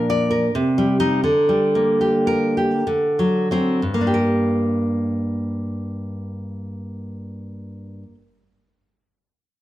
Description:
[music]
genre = romantic piece for solo classical guitar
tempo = 58-88 BPM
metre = 3/4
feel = rubato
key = G minor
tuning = A4 = 440 Hz
[part]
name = nylon-string guitar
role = solo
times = 0.0-8.3 s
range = G2 to D5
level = -18 LUFS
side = equal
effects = none
[sound]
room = moderate recital hall reverb, RT60 1.4 s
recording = dark, warm production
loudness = -17 LUFS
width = side -14 dB against mid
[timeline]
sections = 0.0-3.8 A section; 3.8-9.2 B section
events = slowing down 0.0-3.8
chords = 0.0 Bb; 0.5 Cm; 1.2 Gm/D; 2.9 D7; 3.8 Gm

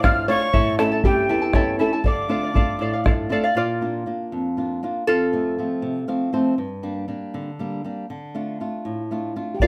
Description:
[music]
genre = andean folk, Andean ensemble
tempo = 79 BPM (dotted quarters)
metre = 6/8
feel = straight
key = D harmonic minor, D minor from 3.6 s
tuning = A4 = 439 Hz
[part]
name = steel pan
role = melody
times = 0.0-3.0, 9.5-9.7 s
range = F4 to F5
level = -26 LUFS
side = equal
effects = none
[part]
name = breathy quena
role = second line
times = 0.0-3.0, 9.6-9.7 s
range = F5 to F6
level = -28 LUFS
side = equal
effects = none
[part]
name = charango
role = accompaniment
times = 0.0-6.3, 9.6-9.7 s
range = E4 to A5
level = -27 LUFS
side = equal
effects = none
[part]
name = flamenco guitar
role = accompaniment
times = 0.0-9.7 s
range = E2 to F5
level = -27 LUFS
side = equal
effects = none
[part]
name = bombo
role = percussion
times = 0.0-3.5, 9.6-9.7 s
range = none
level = -23 LUFS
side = equal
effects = none
[sound]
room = wet small room reverb, RT60 0.5 s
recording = none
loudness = -23 LUFS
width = mono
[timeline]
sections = 0.0-3.6 A section; 3.6-9.6 B section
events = charango solo 3.6-9.6; nylon-string guitar fill 5.8-6.6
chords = 0.0 Dm; 0.5 A; 2.0 Dm; 3.6 Bb; 5.1 F; 6.6 Gm; 8.1 Dm

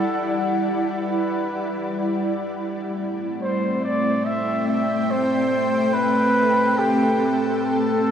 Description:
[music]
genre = ambient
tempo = 72 BPM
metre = 4/4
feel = straight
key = unclear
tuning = A4 = 441 Hz
[part]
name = warm flugelhorn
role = melody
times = 0.0-8.1 s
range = G4 to E5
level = -23 LUFS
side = equal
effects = diffuse ambient delay
[part]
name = ethereal airy pad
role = sustained chords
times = 0.0-8.1 s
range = G3 to G5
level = -21 LUFS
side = equal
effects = ensemble chorus, built-in reverb
[sound]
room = wet huge ambient reverb, RT60 8.8 s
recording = none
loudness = -19 LUFS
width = side -8 dB against mid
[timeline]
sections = 0.0-8.1 A section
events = fade-in on flugelhorn 0.0-8.1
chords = 0.0 Em9; 2.6 Am7

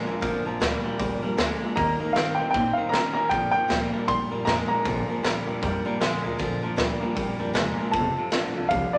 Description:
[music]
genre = rockabilly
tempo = 156 BPM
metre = 4/4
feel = swing 62% on 8ths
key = Bb major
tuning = A4 = 440 Hz
[part]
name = picked steel-string acoustic guitar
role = accompaniment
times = 0.0-9.0 s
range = Bb2 to Bb4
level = -33 LUFS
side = equal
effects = none
[part]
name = twangy electric guitar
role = riff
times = 0.0-9.0 s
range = F2 to Db4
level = -32 LUFS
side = equal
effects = spring reverb
[part]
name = upright bass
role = bass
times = 0.1-9.0 s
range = E1 to Bb2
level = -37 LUFS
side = equal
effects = none
[part]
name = raw garage drum kit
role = drums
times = 0.2-8.8 s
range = hi-hat, kick drum, snare drum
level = -31 LUFS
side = equal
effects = none
[part]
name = warm upright piano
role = melody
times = 1.8-9.0 s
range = D5 to C6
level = -28 LUFS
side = equal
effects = none
[sound]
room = moderate club reverb, RT60 0.5 s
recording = none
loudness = -25 LUFS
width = mono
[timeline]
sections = 0.0-9.0 A section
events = none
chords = 0.0 Bb; 1.8 Eb; 3.3 Bb; 7.9 F

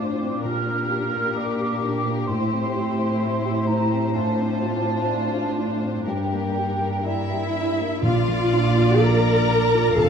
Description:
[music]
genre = cinematic, emotional film score for orchestra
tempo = 60-65 BPM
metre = 4/4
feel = rubato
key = G dorian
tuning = A4 = 440 Hz
[part]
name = warm symphonic violin section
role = melody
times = 0.0-10.1 s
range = Bb4 to F5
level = -31 LUFS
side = left 4 dB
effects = none
[part]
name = mellow large flute ensemble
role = second line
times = 0.0-7.5 s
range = G5 to F6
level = -28 LUFS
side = right 2 dB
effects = none
[part]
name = rich symphonic violin section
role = second line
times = 0.0-10.1 s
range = F4 to Bb5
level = -31 LUFS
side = left 4 dB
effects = none
[part]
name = dark baby grand piano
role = accompaniment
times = 0.0-10.1 s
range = F2 to E5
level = -27 LUFS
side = left 2 dB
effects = none
[part]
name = dark symphonic viola section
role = accompaniment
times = 0.0-10.1 s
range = D4 to Bb4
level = -26 LUFS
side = equal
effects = none
[part]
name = rich symphonic cello section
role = bass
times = 0.0-10.1 s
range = F2 to Bb2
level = -26 LUFS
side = right 2 dB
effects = none
[part]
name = rich symphonic double bass section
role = bass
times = 8.0-10.1 s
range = F1 to Bb1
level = -23 LUFS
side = right 2 dB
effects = none
[part]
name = timpani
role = percussion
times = 8.0-10.1 s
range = F2 to Bb2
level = -26 LUFS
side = right 1 dB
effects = none
[sound]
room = wet scoring stage reverb, RT60 1.9 s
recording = dark, warm production, faint mains hum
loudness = -20 LUFS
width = side -7 dB against mid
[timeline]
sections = 0.0-8.0 A section; 8.0-10.1 B section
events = none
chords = 0.4 Gm7/Bb; 2.3 Am7; 4.1 Dm7/A; 6.1 Gm; 8.0 Bb

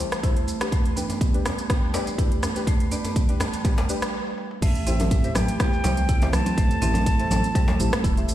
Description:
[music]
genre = afro house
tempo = 123 BPM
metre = 4/4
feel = swing 53% on 16ths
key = A minor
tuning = A4 = 442 Hz
[part]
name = warm analog pad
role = sustained chords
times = 0.0-8.3 s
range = E3 to A4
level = -34 LUFS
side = left 2 dB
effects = chorus, sidechain pumping
[part]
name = deep mellow chord stab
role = stabs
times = 0.0-8.3 s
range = D4 to C5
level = -32 LUFS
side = left 3 dB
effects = chorus, sidechain pumping, digital delay
[part]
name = marimba with medium hard mallets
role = arpeggios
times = 0.1-8.3 s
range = G3 to E4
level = -30 LUFS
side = right 4 dB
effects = sidechain pumping, digital delay
[part]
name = house drum kit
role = drums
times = 0.1-8.3 s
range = crash cymbal, hi-hat, rim click, shaker, toms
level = -31 LUFS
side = equal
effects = high-pass filter on hats, high-pass filter on perc, high-pass filter on snare, high-pass filter on toms, high-pass filter on cymbals, high-pass filter on room
[part]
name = electronic kick drum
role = drums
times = 0.2-8.1 s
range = none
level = -22 LUFS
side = equal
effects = none
[part]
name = djembe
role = percussion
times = 1.0-8.0 s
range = none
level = -32 LUFS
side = left 1 dB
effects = none
[part]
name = breathy bright jazz flute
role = melody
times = 4.6-8.2 s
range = E5 to A5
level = -30 LUFS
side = right 1 dB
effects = digital delay
[part]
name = dark detuned saw bass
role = bass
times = 4.6-8.3 s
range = E1 to C2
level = -25 LUFS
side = equal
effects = sidechain pumping
[part]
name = congas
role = percussion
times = 5.0-8.1 s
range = none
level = -29 LUFS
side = right 2 dB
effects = none
[sound]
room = light reverb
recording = played on a big sound system in a bare room, large studio reverb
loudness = -20 LUFS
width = side -13 dB against mid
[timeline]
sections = 0.0-4.6 A section; 4.6-8.3 B section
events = build-up 0.0-4.6; filter sweep on analog synth pad 0.0-4.6; stop 4.1-4.6; drum fill 4.3-4.6; drop 4.6-8.3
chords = 0.0 Am7; 0.7 Em7; 4.6 Am7

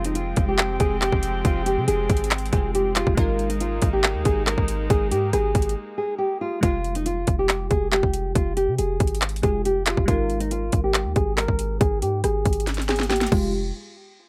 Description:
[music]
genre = hip hop, trap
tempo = 139 BPM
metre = 4/4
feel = half-time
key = F minor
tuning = A4 = 436 Hz
[part]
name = nylon-string guitar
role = melody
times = 0.0-13.5 s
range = Eb4 to Bb4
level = -27 LUFS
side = equal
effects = low-pass filter, delay
[part]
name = glassy digital keys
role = accompaniment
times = 0.0-13.6 s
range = Ab3 to Bb4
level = -35 LUFS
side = equal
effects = chorus, low-pass filter
[part]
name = dark studio string section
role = sustained chords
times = 0.0-6.6 s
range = F3 to G5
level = -35 LUFS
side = equal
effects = none
[part]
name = warm 808-style bass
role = bass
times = 0.0-13.7 s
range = F1 to C3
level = -29 LUFS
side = equal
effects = none
[part]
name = trap drum kit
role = drums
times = 0.0-13.4 s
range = crash cymbal, handclaps, hi-hat, kick drum, rim click, snare drum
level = -25 LUFS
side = equal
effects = overdrive
[sound]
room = light reverb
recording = none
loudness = -23 LUFS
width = mono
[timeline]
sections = 0.0-6.6 A section; 6.6-13.5 B section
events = break 5.8-6.6; filter sweep 6.6-13.5; drum fill 12.7-13.5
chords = 0.0 Fmadd9; 3.2 Absus2; 6.6 Fmadd9; 10.1 Absus2; 13.3 Fmadd9; 13.5 N.C.

